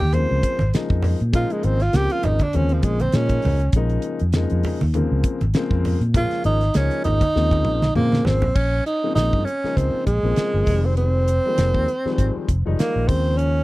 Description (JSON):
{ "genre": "electric jazz fusion", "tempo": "100 BPM", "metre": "4/4", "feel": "swing 55% on 16ths", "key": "Bb dorian", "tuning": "A4 = 439 Hz", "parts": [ { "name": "breathy tenor saxophone", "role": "melody", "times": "0.0-13.6 s", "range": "F3 to C5", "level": "-22 LUFS", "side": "right 2 dB", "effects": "none" }, { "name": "fingered electric bass", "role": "bass", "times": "0.0-13.6 s", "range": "F1 to Bb2", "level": "-20 LUFS", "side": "equal", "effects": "none" }, { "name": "congas", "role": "percussion", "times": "0.0-8.6 s", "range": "none", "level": "-27 LUFS", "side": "right 2 dB", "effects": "none" }, { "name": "dark concert grand piano", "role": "accompaniment", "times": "0.1-13.6 s", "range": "Db3 to Eb4", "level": "-27 LUFS", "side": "left 4 dB", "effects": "none" }, { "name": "damped 70s drum kit", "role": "drums", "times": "0.1-13.5 s", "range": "crash cymbal, hi-hat, kick drum, snare drum, toms", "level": "-22 LUFS", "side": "equal", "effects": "none" } ], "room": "little or no reverb", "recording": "dry, close 1970s-style studio recording", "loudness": "-18 LUFS", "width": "side -18 dB against mid", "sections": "0.0-8.6 A section; 8.6-13.6 B section", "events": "tenor saxophone solo 0.0-8.6; drum fill 7.4-8.6", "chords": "0.0 Bbm9; 10.7 Fm9; 13.1 Eb9sus4" }